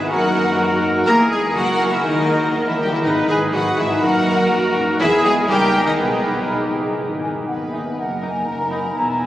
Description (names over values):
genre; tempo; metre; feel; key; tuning
quick classical-period movement for symphony orchestra; 122 BPM; 2/4; straight; G# minor; A4 = 440 Hz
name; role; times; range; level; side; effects
rich studio violin section; melody; 0.0-9.3 s; G#4 to A#5; -26 LUFS; left 1 dB; none
mellow large flute ensemble; second line; 0.0-9.3 s; B4 to B5; -25 LUFS; equal; none
warm studio viola section; accompaniment; 0.0-9.3 s; A#3 to B4; -24 LUFS; equal; none
dark French horn section; sustained chords; 0.0-9.3 s; G#3 to G#4; -24 LUFS; left 1 dB; none
clear trumpet; stabs; 0.0-6.7 s; G#4 to B4; -24 LUFS; equal; none
warm studio double bass section; bass; 0.0-9.3 s; E1 to F#2; -28 LUFS; right 1 dB; none
rich studio violin section; second line; 0.1-9.3 s; B3 to B4; -26 LUFS; left 1 dB; none
warm clarinet; second line; 0.1-6.5 s; B3 to A#4; -25 LUFS; left 1 dB; none
warm studio cello section; bass; 0.1-9.3 s; D#2 to A#3; -26 LUFS; right 1 dB; none
room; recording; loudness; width
wet cathedral reverb, RT60 4.9 s; recorded on a phone in the room, club reverb, compression; -16 LUFS; side -14 dB against mid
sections
0.0-7.0 A section; 7.0-9.3 A section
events
none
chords
0.1 D#m/F#; 1.1 E; 1.6 A#dim/C#; 2.1 D#sus4; 2.6 D#; 3.0 G#m; 4.0 D#m/F#; 5.0 E; 5.5 D#7/C#; 6.0 G#m/B; 7.0 G#m; 8.0 D#m/F#